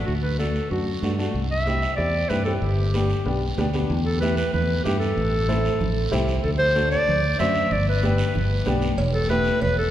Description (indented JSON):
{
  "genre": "latin, cumbia",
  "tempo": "189 BPM",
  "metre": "4/4",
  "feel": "straight",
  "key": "G major",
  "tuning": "A4 = 440 Hz",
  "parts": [
    { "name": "warm upright piano", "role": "accompaniment", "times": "0.0-9.5 s", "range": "A3 to C5", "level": "-29 LUFS", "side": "left 1 dB", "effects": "none" },
    { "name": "warm clarinet", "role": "melody", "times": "0.1-9.9 s", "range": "F#4 to E5", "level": "-25 LUFS", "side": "equal", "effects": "none" },
    { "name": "fingered electric bass", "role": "bass", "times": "0.1-9.9 s", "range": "E1 to G2", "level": "-24 LUFS", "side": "equal", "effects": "none" },
    { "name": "congas", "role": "percussion", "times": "0.1-9.8 s", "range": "none", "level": "-30 LUFS", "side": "right 1 dB", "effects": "none" },
    { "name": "guiro", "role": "percussion", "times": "0.1-9.9 s", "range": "none", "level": "-36 LUFS", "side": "right 3 dB", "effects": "none" },
    { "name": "cowbell", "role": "percussion", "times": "9.0-9.8 s", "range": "none", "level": "-32 LUFS", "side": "right 2 dB", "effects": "none" }
  ],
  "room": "wet church reverb, RT60 2.7 s",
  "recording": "recorded in a church or concert hall",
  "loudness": "-20 LUFS",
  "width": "side -12 dB against mid",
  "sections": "0.0-3.9 A section; 3.9-9.9 B section",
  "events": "none",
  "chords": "0.0 D; 1.4 Cadd9; 2.6 G; 3.9 Em; 5.2 Am7; 6.4 D; 7.7 G; 9.0 Em",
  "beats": "| 0.07 0.39 0.71 1.03 | 1.35 1.67 1.99 2.31 | 2.62 2.94 3.26 3.58 | 3.90 4.22 4.53 4.85 | 5.17 5.49 5.81 6.12 | 6.44 6.76 7.08 7.39 | 7.71 8.03 8.35 8.66 | 8.98 9.30 9.62"
}